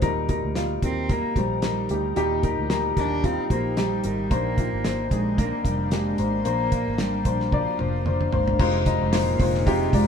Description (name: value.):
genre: piano-driven pop.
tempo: 112 BPM.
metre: 4/4.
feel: swing 56% on 16ths.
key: unclear.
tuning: A4 = 440 Hz.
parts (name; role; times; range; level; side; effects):
warm baby grand piano; accompaniment; 0.0-10.1 s; Bb2 to Eb5; -25 LUFS; left 3 dB; none.
shimmering ambient pad; sustained chords; 1.2-10.1 s; D4 to G5; -36 LUFS; left 1 dB; chorus, built-in reverb.
vintage muted fingered electric bass; bass; 0.0-10.1 s; F1 to Eb2; -28 LUFS; right 1 dB; none.
damped 70s drum kit; drums; 0.0-10.1 s; crash cymbal, hi-hat, kick drum, snare drum, toms; -26 LUFS; right 1 dB; none.
warm cello; melody; 0.8-10.1 s; Ab2 to D4; -29 LUFS; right 2 dB; none.
group handclap; percussion; 9.1-9.3 s; none; -37 LUFS; right 7 dB; none.
room: moderate studio reverb, RT60 0.8 s.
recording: band playing live in one room.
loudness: -21 LUFS.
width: side -7 dB against mid.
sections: 0.0-8.6 A section; 8.6-10.1 B section.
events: drum fill 7.5-8.6.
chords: 0.0 Eb; 4.3 Bbadd9; 8.6 Fm7.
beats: | 0.03 0.56 1.10 1.63 | 2.17 2.70 3.24 3.77 | 4.31 4.85 5.38 5.92 | 6.45 6.99 7.52 8.06 | 8.60 9.13 9.67.